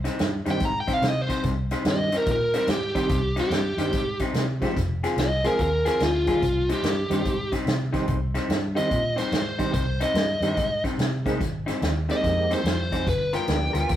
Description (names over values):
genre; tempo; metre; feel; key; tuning
electric blues shuffle; 145 BPM; 4/4; swing 64% on 8ths; C minor; A4 = 440 Hz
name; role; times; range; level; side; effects
electric guitar through a small old amp; riff; 0.0-14.0 s; Ab2 to A#4; -29 LUFS; left 2 dB; none
vintage muted fingered electric bass; bass; 0.0-14.0 s; F1 to C3; -28 LUFS; equal; none
natural country drum kit; drums; 0.0-14.0 s; hi-hat, kick drum, snare drum; -29 LUFS; right 1 dB; none
biting lead guitar; melody; 0.5-14.0 s; F4 to Bb5; -25 LUFS; equal; overdrive
tonewheel organ; accompaniment; 0.5-13.7 s; Eb3 to Ab4; -31 LUFS; right 3 dB; slow rotary speaker, chorus vibrato
room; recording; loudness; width
light reverb; rough rehearsal-room recording; -22 LUFS; side -11 dB against mid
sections
0.0-14.0 A section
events
none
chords
0.0 Cm; 4.8 Fm; 6.4 Cm; 11.4 Abmaj7; 13.1 G7#9